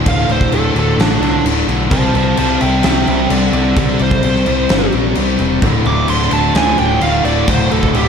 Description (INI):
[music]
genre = hard rock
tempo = 129 BPM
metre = 4/4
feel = straight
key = unclear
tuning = A4 = 438 Hz
[part]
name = crunchy overdriven guitar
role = riff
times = 0.0-8.1 s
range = D2 to C4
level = -18 LUFS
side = left 10 dB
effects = none
[part]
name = distorted electric guitar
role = riff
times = 0.0-8.1 s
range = D2 to C4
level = -21 LUFS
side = right 10 dB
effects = distortion, slapback echo
[part]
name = bluesy overdriven lead guitar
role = melody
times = 0.1-8.1 s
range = D4 to D6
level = -18 LUFS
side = right 3 dB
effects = distortion, slapback echo
[part]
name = picked electric bass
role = bass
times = 0.1-8.1 s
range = D1 to D2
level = -19 LUFS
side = equal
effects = none
[part]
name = big rock drum kit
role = drums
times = 0.1-8.1 s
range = crash cymbal, kick drum, snare drum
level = -17 LUFS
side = equal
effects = none
[part]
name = tight distorted guitar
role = riff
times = 5.6-8.1 s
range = D2 to D3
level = -23 LUFS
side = right 2 dB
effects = none
[sound]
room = moderate recital hall reverb, RT60 1.4 s, small room ambience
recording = big arena sound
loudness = -11 LUFS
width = side -6 dB against mid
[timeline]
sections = 0.0-8.1 A section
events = lead electric guitar solo 0.0-8.1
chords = 0.0 D5; 1.9 C5; 5.6 D5